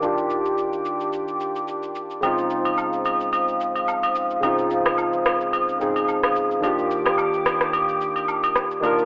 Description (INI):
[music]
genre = amapiano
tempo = 109 BPM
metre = 4/4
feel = swing 55% on 16ths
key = unclear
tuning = A4 = 440 Hz
[part]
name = soft electric-piano-like synth keys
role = accompaniment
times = 0.0-9.1 s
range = Db3 to Bb4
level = -27 LUFS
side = equal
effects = chorus, low-pass filter
[part]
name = warm analog pad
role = sustained chords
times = 0.0-9.1 s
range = Eb3 to Eb6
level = -30 LUFS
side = equal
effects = chorus, low-pass filter
[part]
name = electronic shaker and rim click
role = drums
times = 0.0-9.1 s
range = none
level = -30 LUFS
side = equal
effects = cassette tape
[part]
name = fingered electric bass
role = bass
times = 2.2-9.1 s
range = Db2 to Eb2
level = -40 LUFS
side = equal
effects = none
[part]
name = agogo bells and woodblock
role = percussion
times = 2.2-9.0 s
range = none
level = -26 LUFS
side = equal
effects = none
[sound]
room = moderate spring reverb, RT60 2.5 s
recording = home recording on cassette, telephone sound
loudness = -23 LUFS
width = mono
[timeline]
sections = 0.0-9.1 A section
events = filter sweep 0.0-9.1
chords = 0.0 Ebmaj9; 2.2 Dbmaj9; 6.6 Ebmaj9